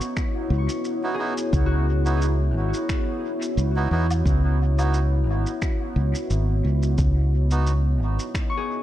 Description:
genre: ambient dub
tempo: 88 BPM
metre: 4/4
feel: swing 55% on 16ths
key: C# minor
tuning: A4 = 440 Hz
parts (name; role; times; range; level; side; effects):
- deep dark ambient pad; sustained chords; 0.0-8.8 s; B3 to F#5; -28 LUFS; left 1 dB; chorus, built-in reverb
- concert harp; arpeggios; 0.0-8.8 s; F#4 to C#6; -35 LUFS; left 2 dB; vintage 12-bit sampler grit, tape echo
- electronic shaker, finger snaps and woodblock; drums; 0.0-8.5 s; none; -36 LUFS; equal; studio reverb, dub echo
- electronic kick drum; drums; 0.2-8.5 s; none; -25 LUFS; equal; overdrive, studio reverb
- fingered electric bass; bass; 0.5-8.2 s; G#1 to E2; -20 LUFS; equal; tube saturation
- melodica; stabs; 1.0-7.7 s; B3 to F#4; -32 LUFS; right 4 dB; dub echo
room: digital ambience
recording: dark, warm production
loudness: -20 LUFS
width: side -13 dB against mid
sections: 0.0-8.8 A section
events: none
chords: 0.0 C#m11; 7.0 B

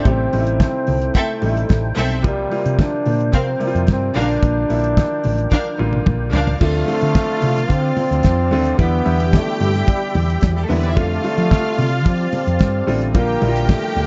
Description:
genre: disco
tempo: 110 BPM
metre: 4/4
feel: straight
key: D minor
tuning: A4 = 443 Hz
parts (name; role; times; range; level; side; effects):
- mellow trombone; melody; 0.0-14.1 s; G3 to D4; -24 LUFS; equal; none
- clear baby grand piano; accompaniment; 0.0-14.1 s; Bb2 to G4; -28 LUFS; equal; none
- percussive tonewheel organ; sustained chords; 0.0-14.1 s; F3 to B5; -32 LUFS; equal; chorus vibrato, slow rotary speaker
- hollow-body short-scale fingered electric bass; bass; 0.1-14.1 s; A1 to F3; -22 LUFS; equal; none
- damped 70s drum kit; drums; 0.1-14.1 s; crash cymbal, hi-hat, kick drum, snare drum, toms; -19 LUFS; equal; none
- congas; percussion; 0.1-14.1 s; none; -30 LUFS; equal; none
- bright studio string section; second line; 1.2-14.1 s; G3 to G5; -28 LUFS; equal; none
room: light reverb, small room reverb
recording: dark, warm production, nothing above 7.7 kHz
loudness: -18 LUFS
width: mono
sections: 0.0-6.6 A section; 6.6-14.1 B section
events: drum fill 5.5-6.6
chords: 0.0 Am7; 2.2 C7sus4; 4.2 Bb6; 6.6 Dm7; 8.8 Em7; 11.0 F69; 13.1 Bb6

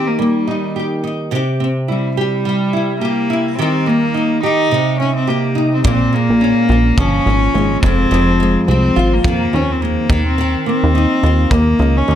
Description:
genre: acoustic pop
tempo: 106 BPM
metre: 4/4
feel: swing 60% on 16ths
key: unclear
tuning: A4 = 440 Hz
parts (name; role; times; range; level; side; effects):
- warm cello; melody; 0.0-12.2 s; G3 to Eb4; -17 LUFS; left 1 dB; none
- nylon-string guitar; accompaniment; 0.0-12.2 s; F2 to G4; -17 LUFS; equal; double-tracked left and right
- plucky analog bass; bass; 5.8-12.2 s; F1 to F2; -16 LUFS; equal; none
- kick drum; drums; 5.8-11.7 s; none; -18 LUFS; equal; none
room: moderate studio reverb, RT60 0.7 s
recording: faint mains hum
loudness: -13 LUFS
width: side -10 dB against mid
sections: 0.0-5.8 A section; 5.8-12.2 B section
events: none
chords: 0.0 Eb; 1.3 C; 3.6 Eb; 4.7 Cm; 5.8 Bbm7; 7.8 Fm7; 10.1 Ebsus2

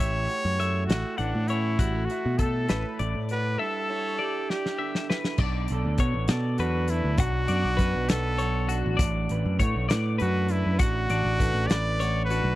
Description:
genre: math rock and midwest emo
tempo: 67 BPM (dotted quarters)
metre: 6/8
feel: straight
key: unclear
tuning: A4 = 440 Hz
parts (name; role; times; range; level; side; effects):
- bright trumpet; melody; 0.0-12.6 s; D4 to D5; -30 LUFS; equal; none
- electric guitar through a small old amp; accompaniment; 0.0-12.6 s; G2 to B4; -34 LUFS; right 8 dB; none
- twelve-string electric guitar; arpeggios; 0.0-12.6 s; F#4 to F#5; -32 LUFS; left 6 dB; spring reverb
- picked electric bass; bass; 0.0-12.6 s; A1 to B2; -26 LUFS; equal; none
- loose indie drum kit; drums; 0.3-12.4 s; crash cymbal, hi-hat, kick drum, snare drum; -26 LUFS; equal; none
room: little or no reverb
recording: dry, close 1970s-style studio recording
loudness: -23 LUFS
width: side -16 dB against mid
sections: 0.0-5.4 A section; 5.4-12.6 B section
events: drum fill 4.5-5.4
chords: 0.0 A13; 1.8 D69/A; 3.6 G69; 5.4 Bm9; 9.0 D6/A

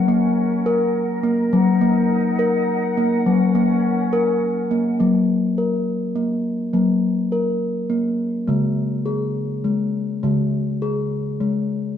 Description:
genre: world meditative, meditative tuned percussion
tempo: 69 BPM (dotted quarters)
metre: 6/8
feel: straight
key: Gb major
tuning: A4 = 443 Hz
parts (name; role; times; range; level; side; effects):
- large flute ensemble; sustained chords; 0.0-5.0 s; Db4 to Gb5; -26 LUFS; left 1 dB; none
- steel tongue drum; arpeggios; 0.0-12.0 s; Db3 to Bb4; -18 LUFS; left 1 dB; none
room: wet echo chamber reverb, RT60 1.4 s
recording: dark, warm production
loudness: -18 LUFS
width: side -9 dB against mid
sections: 0.0-5.0 A section; 5.0-12.0 B section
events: none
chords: 0.0 Gb; 1.5 Ebm/Gb; 3.3 Gb; 8.5 Db5

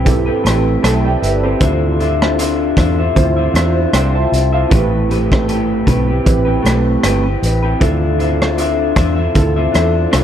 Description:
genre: indie pop, bedroom pop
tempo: 78 BPM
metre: 4/4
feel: swing 55% on 16ths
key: D dorian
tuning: A4 = 440 Hz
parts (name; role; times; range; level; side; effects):
- electric guitar through a small old amp; accompaniment; 0.0-10.2 s; A3 to E5; -18 LUFS; left 4 dB; wide subtle chorus, vibrato effect
- warbly lo-fi synth keys; accompaniment; 0.0-10.2 s; C4 to C6; -19 LUFS; right 6 dB; chorus
- vintage muted fingered electric bass; bass; 0.0-10.2 s; G1 to E2; -17 LUFS; equal; none
- raw garage drum kit; drums; 0.1-10.2 s; hi-hat, kick drum, rim click; -18 LUFS; equal; none
room: small room ambience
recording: none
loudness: -12 LUFS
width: side -9 dB against mid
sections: 0.0-10.2 A section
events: none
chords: 0.0 Am9; 1.6 Dm9; 4.7 Am9; 7.8 Dm9

